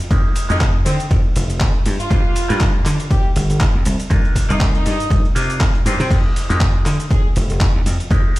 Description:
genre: filtered disco house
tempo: 120 BPM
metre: 4/4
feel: swing 56% on 16ths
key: F dorian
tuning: A4 = 440 Hz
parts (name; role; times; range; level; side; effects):
- bright clav; accompaniment; 0.0-8.4 s; G3 to D5; -27 LUFS; equal; phaser, sidechain pumping
- dusty soul sampler-style drum kit; drums; 0.0-8.4 s; crash cymbal, handclaps, hi-hat, ride cymbal, shaker; -26 LUFS; equal; sidechain pumping on hats, studio reverb, sidechain pumping on perc, sidechain pumping on cymbals
- dry thumbed slap bass; bass; 0.1-8.2 s; F1 to D3; -20 LUFS; equal; sidechain pumping
- electronic kick drum; drums; 0.1-8.2 s; none; -16 LUFS; equal; studio reverb
- brilliant horn section; melody; 0.5-7.3 s; C4 to Ab4; -27 LUFS; equal; sidechain pumping, tape echo
room: little or no reverb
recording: played on a big sound system in a bare room, stone room reverb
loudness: -14 LUFS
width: side -18 dB against mid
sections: 0.0-8.4 A section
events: none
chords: 0.0 Fm11; 1.9 Gm7; 3.9 Cm11; 6.1 Fm11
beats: | 0.11 0.61 1.11 1.61 | 2.11 2.61 3.11 3.61 | 4.11 4.61 5.11 5.61 | 6.11 6.61 7.11 7.61 | 8.11

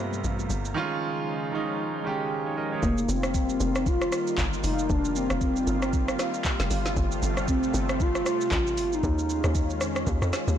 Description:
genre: amapiano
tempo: 116 BPM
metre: 4/4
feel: swing 58% on 16ths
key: unclear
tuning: A4 = 439 Hz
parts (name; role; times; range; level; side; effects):
- clear concert grand piano; accompaniment; 0.0-3.0 s; C3 to Eb5; -29 LUFS; right 4 dB; low-pass filter
- lush unison pad; sustained chords; 0.0-10.6 s; C3 to F4; -32 LUFS; equal; chorus, sidechain pumping, low-pass filter
- upright bass; bass; 0.0-0.7 s; G2; -35 LUFS; equal; none
- smooth R&B drum kit; drums; 0.1-10.6 s; handclaps, hi-hat, kick drum, rim click, shaker, snare drum; -29 LUFS; equal; soft clipping on snare
- congas; percussion; 0.1-0.6 s; none; -38 LUFS; left 12 dB; none
- tight log drum bass; bass; 0.2-10.6 s; F1 to F2; -29 LUFS; equal; none
- hollow clarinet-like synth lead; melody; 2.8-10.0 s; Bb3 to F4; -28 LUFS; left 1 dB; chorus, low-pass filter
room: light reverb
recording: blown-out, overdriven recording, overdrive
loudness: -24 LUFS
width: side -10 dB against mid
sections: 0.0-2.8 A section; 2.8-10.6 B section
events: drop 2.8-10.6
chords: 0.0 G9sus4; 0.8 Eb9sus4; 2.8 F9sus4; 6.7 G9sus4; 9.0 Eb9sus4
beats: 0.24 | 0.76 1.28 1.79 2.31 | 2.83 3.35 3.86 4.38 | 4.90 5.42 5.93 6.45 | 6.97 7.48 8.00 8.52 | 9.04 9.55 10.07

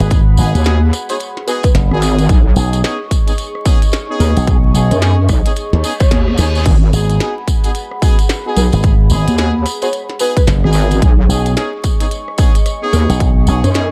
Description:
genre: glitch hop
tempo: 110 BPM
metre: 4/4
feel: swing 61% on 16ths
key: G# minor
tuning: A4 = 440 Hz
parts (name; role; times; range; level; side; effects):
- dark analog pad; sustained chords; 0.0-13.9 s; G#4 to C#6; -29 LUFS; equal; chorus, phaser, sidechain pumping
- bright horn section; stabs; 0.0-13.9 s; B3 to G#4; -24 LUFS; equal; sidechain pumping, dub echo
- slap bass with an envelope filter; bass; 0.0-13.6 s; F#1 to D#2; -16 LUFS; equal; none
- glitchy drum kit; drums; 0.0-13.9 s; crash cymbal, hi-hat, rim click, snare drum; -26 LUFS; equal; none
- tambourine; percussion; 0.0-13.9 s; none; -30 LUFS; equal; none
- electronic kick drum; drums; 0.1-13.3 s; none; -14 LUFS; equal; none
- wobble bass; bass; 0.5-13.9 s; G#1 to F#2; -15 LUFS; equal; chorus, tube saturation
- woody wave-folded pluck; melody; 1.1-13.7 s; B4 to C#5; -25 LUFS; equal; lush chorus, dub echo
- reverse cymbal; sound effects; 5.8-6.7 s; none; -31 LUFS; equal; none
room: little or no reverb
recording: dark, warm production, vinyl crackle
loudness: -13 LUFS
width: mono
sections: 0.0-13.9 A section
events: reverse cymbal 5.8-6.7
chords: 0.0 G#m7; 2.3 B69; 6.7 G#m7; 11.0 B69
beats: | 0.11 0.66 1.20 1.75 | 2.29 2.84 3.38 3.93 | 4.47 5.02 5.57 6.11 | 6.66 7.20 7.75 8.29 | 8.84 9.38 9.93 10.47 | 11.02 11.57 12.11 12.66 | 13.20 13.75

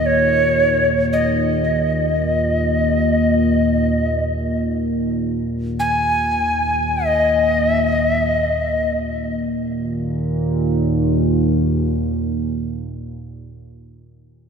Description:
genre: world meditative, free-time meditation music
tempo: free time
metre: none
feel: none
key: unclear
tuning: A4 = 440 Hz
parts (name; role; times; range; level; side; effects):
- breathy bright Native American-style cedar flute; melody; 0.0-8.9 s; Db5 to Ab5; -18 LUFS; left 1 dB; ping-pong delay
- deep dark ambient pad; drone; 0.0-13.2 s; Eb2 to Bb2; -19 LUFS; equal; chorus, built-in reverb
room: wet lush hall reverb, RT60 3.0 s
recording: dreamy mix soaked in reverb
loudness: -16 LUFS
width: side -6 dB against mid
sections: 0.0-9.1 A section; 9.1-13.2 B section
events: none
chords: none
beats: free time

